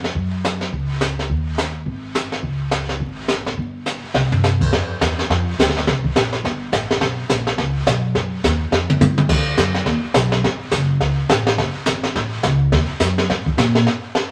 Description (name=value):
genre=jazz, small-group swing and bop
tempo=210 BPM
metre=4/4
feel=swing 60% on 8ths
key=unclear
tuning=A4 = 440 Hz
part: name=upright bass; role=bass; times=0.0-13.9 s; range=Gb1 to Bb2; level=-24 LUFS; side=equal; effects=none
part: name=jazz brush drum kit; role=drums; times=0.0-14.3 s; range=brushed snare drum, crash cymbal, hi-hat, kick drum, snare drum, toms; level=-21 LUFS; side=equal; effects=none
room=moderate studio reverb, RT60 0.7 s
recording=vinyl crackle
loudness=-19 LUFS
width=mono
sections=0.0-4.7 A section; 4.7-13.9 B section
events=drum fill 3.9-4.4, 8.7-9.3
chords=none